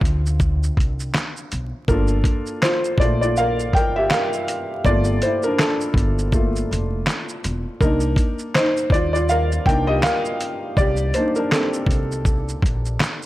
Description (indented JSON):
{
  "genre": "lo-fi hip hop",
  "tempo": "81 BPM",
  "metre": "4/4",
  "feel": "swing 57% on 16ths",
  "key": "unclear",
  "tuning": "A4 = 440 Hz",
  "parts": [
    { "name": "felt-muted upright piano", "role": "accompaniment", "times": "0.0-13.3 s", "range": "D3 to G5", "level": "-21 LUFS", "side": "equal", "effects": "cassette tape" },
    { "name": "upright bass", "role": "bass", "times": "0.0-13.0 s", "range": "E1 to Eb2", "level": "-22 LUFS", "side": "equal", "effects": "none" },
    { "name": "dusty soul sampler-style drum kit", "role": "drums", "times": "0.0-13.3 s", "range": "handclaps, hi-hat, kick drum, shaker, snare drum", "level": "-21 LUFS", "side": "equal", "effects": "none" }
  ],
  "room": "light reverb, small room ambience",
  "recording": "vinyl crackle",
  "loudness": "-18 LUFS",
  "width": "side -16 dB against mid",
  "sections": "0.0-1.9 A section; 1.9-13.3 B section",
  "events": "felt piano solo 1.9-13.3",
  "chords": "0.0 Dm7; 1.9 Gm7; 7.8 Cm7"
}